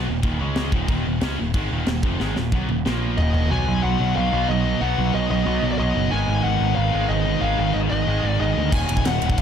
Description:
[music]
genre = heavy metal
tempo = 184 BPM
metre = 4/4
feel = straight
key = unclear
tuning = A4 = 440 Hz
[part]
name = distorted electric guitar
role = riff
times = 0.0-9.4 s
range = Eb2 to F#4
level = -27 LUFS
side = equal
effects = distortion
[part]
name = scooped high-gain guitar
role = riff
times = 0.0-9.4 s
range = Eb2 to Db4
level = -30 LUFS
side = left 13 dB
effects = distortion
[part]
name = scooped high-gain guitar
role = riff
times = 0.0-9.4 s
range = Eb2 to Db4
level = -27 LUFS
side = right 10 dB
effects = distortion
[part]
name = growling picked electric bass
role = bass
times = 0.0-9.4 s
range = Eb1 to D2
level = -24 LUFS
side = equal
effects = overdrive
[part]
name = tight metal drum kit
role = drums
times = 0.2-3.4, 8.7-9.4 s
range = crash cymbal, kick drum, ride cymbal, snare drum, toms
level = -24 LUFS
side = equal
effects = none
[part]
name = high-gain lead guitar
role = melody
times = 3.2-9.4 s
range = D5 to Ab5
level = -25 LUFS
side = left 2 dB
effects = distortion
[sound]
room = small room ambience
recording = dark, warm production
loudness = -19 LUFS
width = side -8 dB against mid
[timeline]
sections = 0.0-3.5 A section; 3.5-9.4 B section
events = drum fill 2.2-3.5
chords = 0.4 Db5; 0.7 Ebm; 2.9 Bb5; 3.2 Eb5; 3.5 B; 6.1 Abm; 8.7 Ebm

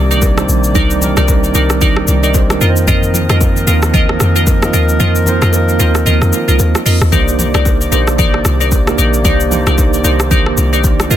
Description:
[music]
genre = amapiano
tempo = 113 BPM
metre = 4/4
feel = swing 58% on 16ths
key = C minor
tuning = A4 = 440 Hz
[part]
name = mellow tine electric piano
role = accompaniment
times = 0.0-11.2 s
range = G3 to Eb5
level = -18 LUFS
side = right 6 dB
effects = fast stereo tremolo
[part]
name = mellow woodwind section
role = sustained chords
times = 0.0-11.2 s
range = C3 to D5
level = -20 LUFS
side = left 2 dB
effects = sidechain pumping
[part]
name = glassy wavetable pluck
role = stabs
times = 0.0-11.2 s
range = Eb4 to Eb5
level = -18 LUFS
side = left 1 dB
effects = chorus, digital delay
[part]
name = deep log drum bass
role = bass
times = 0.0-11.2 s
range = Bb1 to F2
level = -14 LUFS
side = equal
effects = none
[part]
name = deep house drum kit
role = drums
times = 0.1-11.2 s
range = hi-hat, kick drum, rim click, shaker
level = -15 LUFS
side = left 1 dB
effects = soft clipping on snare
[part]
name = bongos and congas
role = percussion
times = 0.2-11.1 s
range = none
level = -24 LUFS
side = left 1 dB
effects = none
[sound]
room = little or no reverb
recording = dense, heavily limited modern master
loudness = -9 LUFS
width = side -11 dB against mid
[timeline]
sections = 0.0-11.2 A section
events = kick muted 5.0-7.1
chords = 0.0 Cm9; 2.6 F7sus4; 7.1 Cm9

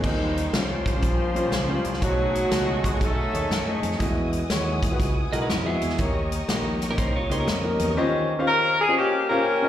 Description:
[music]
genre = uptempo gospel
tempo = 121 BPM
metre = 4/4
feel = swing 66% on 8ths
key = unclear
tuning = A4 = 439 Hz
[part]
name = clear saxophone section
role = melody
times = 0.0-4.0, 8.5-9.7 s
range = G3 to Bb4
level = -24 LUFS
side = left 2 dB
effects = plate reverb, slapback echo
[part]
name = warm concert grand piano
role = accompaniment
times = 0.0-9.7 s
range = B2 to F5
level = -27 LUFS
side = left 1 dB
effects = plate reverb, slapback echo
[part]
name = tonewheel organ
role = sustained chords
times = 0.0-8.0 s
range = A3 to D#6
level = -34 LUFS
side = right 1 dB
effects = slow rotary speaker, overdrive, chorus vibrato, plate reverb
[part]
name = warm studio string section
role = sustained chords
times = 0.0-8.0 s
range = Db4 to D#6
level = -38 LUFS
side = left 3 dB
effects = plate reverb
[part]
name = fingered electric bass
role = bass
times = 0.0-7.9 s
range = Bb1 to F#2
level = -28 LUFS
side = equal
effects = none
[part]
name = natural country drum kit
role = drums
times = 0.0-7.9 s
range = crash cymbal, hi-hat, kick drum, snare drum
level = -27 LUFS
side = equal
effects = none
[part]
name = breathy tenor saxophone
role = melody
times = 0.1-3.8 s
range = Eb3 to A3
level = -29 LUFS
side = right 3 dB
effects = slapback echo, plate reverb
[part]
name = clean electric guitar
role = second line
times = 5.3-7.9 s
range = B3 to D#5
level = -31 LUFS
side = right 4 dB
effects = plate reverb, slapback echo
[sound]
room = light reverb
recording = live gig heard through the venue's PA, recital hall reverb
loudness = -21 LUFS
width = side -11 dB against mid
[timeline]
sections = 0.0-8.0 A section; 8.0-9.7 B section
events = none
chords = 0.0 Eb13; 2.0 B13; 4.0 Emaj9; 6.0 Eb7; 8.0 Eb13

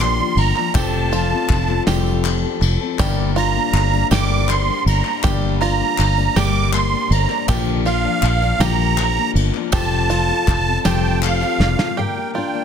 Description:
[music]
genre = indie folk with a building arrangement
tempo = 54 BPM (dotted quarters)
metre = 6/8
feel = straight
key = G minor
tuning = A4 = 439 Hz
[part]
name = musette accordion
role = melody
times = 0.0-12.6 s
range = F5 to D6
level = -21 LUFS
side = right 6 dB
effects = none
[part]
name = clear upright piano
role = accompaniment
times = 0.0-12.0 s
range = F1 to A5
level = -27 LUFS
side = left 7 dB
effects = none
[part]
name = picked steel-string acoustic guitar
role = accompaniment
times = 0.0-12.6 s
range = G2 to Bb4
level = -25 LUFS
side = left 11 dB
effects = none
[part]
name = bluegrass banjo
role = arpeggios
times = 0.0-12.6 s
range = F4 to G4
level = -28 LUFS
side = right 7 dB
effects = none
[part]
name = fingered electric bass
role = bass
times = 0.0-11.7 s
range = F1 to Bb1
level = -19 LUFS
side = equal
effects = none
[part]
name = soft brush drum kit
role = drums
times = 0.0-12.0 s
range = kick drum, ride cymbal, snare drum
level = -23 LUFS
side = equal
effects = soft clipping on snare
[part]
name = group handclap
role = percussion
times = 0.0-11.5 s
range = none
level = -30 LUFS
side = left 13 dB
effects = none
[part]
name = tambourine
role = percussion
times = 0.8-11.5 s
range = none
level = -36 LUFS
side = right 18 dB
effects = none
[part]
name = fingerpicked steel-string acoustic guitar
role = accompaniment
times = 12.0-12.6 s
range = G2 to Bb4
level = -24 LUFS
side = left 4 dB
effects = none
[sound]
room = small room reverb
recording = dense, heavily limited modern master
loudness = -15 LUFS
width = side -8 dB against mid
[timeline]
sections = 0.0-12.0 A section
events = upright piano fill 10.9-12.0; drum fill 11.6-12.0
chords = 0.0 Bb; 0.8 F; 3.0 Gm; 9.7 F; 12.0 Gm

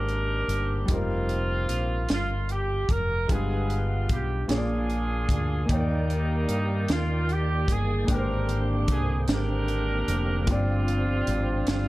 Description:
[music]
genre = slow gospel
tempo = 50 BPM (dotted quarters)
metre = 6/8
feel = straight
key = unclear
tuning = A4 = 440 Hz
[part]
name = warm horn section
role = melody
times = 0.0-11.9 s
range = G3 to Bb4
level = -30 LUFS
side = right 1 dB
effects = none
[part]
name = clear baby grand piano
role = accompaniment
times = 0.0-11.9 s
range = G2 to G5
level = -31 LUFS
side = left 1 dB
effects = none
[part]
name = fingered electric bass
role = bass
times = 0.0-11.9 s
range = F1 to G2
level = -27 LUFS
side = equal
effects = none
[part]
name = crisp fusion drum kit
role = drums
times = 0.1-11.9 s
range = hi-hat, kick drum, snare drum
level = -29 LUFS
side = equal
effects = none
[part]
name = tonewheel organ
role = sustained chords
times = 5.7-11.9 s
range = D3 to G5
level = -35 LUFS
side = right 2 dB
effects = slow rotary speaker, overdrive, chorus vibrato
[sound]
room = small room ambience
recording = dark, warm production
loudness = -24 LUFS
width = side -18 dB against mid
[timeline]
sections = 0.0-11.9 A section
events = none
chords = 0.0 Abmaj9#11; 0.9 F9sus4; 3.3 G7b9; 4.5 Bb7; 5.7 Ebmaj7; 8.1 Abmaj9#11; 10.5 G7sus4

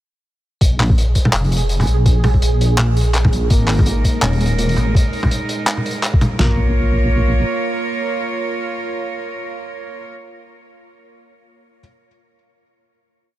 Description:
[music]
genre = half-time drum and bass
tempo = 166 BPM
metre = 4/4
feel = swing 57% on 16ths, half-time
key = Bb minor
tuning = A4 = 441 Hz
[part]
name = deep soft wobble bass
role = bass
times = 0.6-7.4 s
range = Eb1 to Bb1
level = -16 LUFS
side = equal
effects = chorus
[part]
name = boom bap sampler-style drum kit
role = drums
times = 0.6-6.5 s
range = kick drum, snare drum, toms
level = -15 LUFS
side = equal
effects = none
[part]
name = crunchy breakbeat drum kit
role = drums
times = 0.6-6.3 s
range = handclaps, hi-hat, toms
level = -20 LUFS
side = equal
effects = none
[part]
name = pulsing gated texture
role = texture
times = 1.0-5.0 s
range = Ab4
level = -28 LUFS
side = right 10 dB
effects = chorus, built-in reverb
[part]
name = clear symphonic cello section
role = sustained chords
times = 3.5-10.0 s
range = Ab3 to Db5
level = -23 LUFS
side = right 3 dB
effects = sidechain pumping
[part]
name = felt-muted upright piano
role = arpeggios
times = 3.5-6.6 s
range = Bb3 to Db4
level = -27 LUFS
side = left 2 dB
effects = ping-pong delay
[sound]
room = studio reverb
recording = none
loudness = -14 LUFS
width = side -14 dB against mid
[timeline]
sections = 0.6-6.4 drop; 6.4-9.3 final chord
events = drop 0.6-6.4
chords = 0.6 Bb5; 3.5 Ab5; 6.4 Bbm

